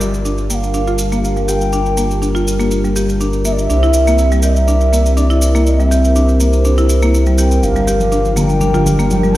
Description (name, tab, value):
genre	afro house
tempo	122 BPM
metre	4/4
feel	swing 53% on 16ths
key	G dorian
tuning	A4 = 440 Hz
part	mellow bass bansuri	melody	0.0-9.4 s	D5 to Bb5	-20 LUFS	right 1 dB	vintage 12-bit sampler grit, tape echo
part	dark analog pad	sustained chords	0.0-9.4 s	G3 to Bb5	-22 LUFS	left 1 dB	chorus
part	buzzing marimba with hard mallets	arpeggios	0.0-9.4 s	G3 to G4	-20 LUFS	left 1 dB	low-pass filter, tape echo
part	mellow synth brass	stabs	0.0-9.4 s	C4 to Bb4	-20 LUFS	equal	chorus, tape echo
part	warm sub bass	bass	0.0-9.4 s	G1 to C2	-15 LUFS	equal	tube saturation
part	maracas	percussion	0.0-9.3 s	none	-26 LUFS	right 1 dB	none
part	congas	percussion	7.6-9.4 s	none	-18 LUFS	equal	none
room	moderate lush hall reverb, RT60 1.9 s, small room ambience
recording	played on a big sound system in a bare room, stone room reverb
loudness	-11 LUFS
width	side -15 dB against mid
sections	0.0-9.4 A section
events	none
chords	0.0 Gm7; 3.7 C7; 7.6 Gm7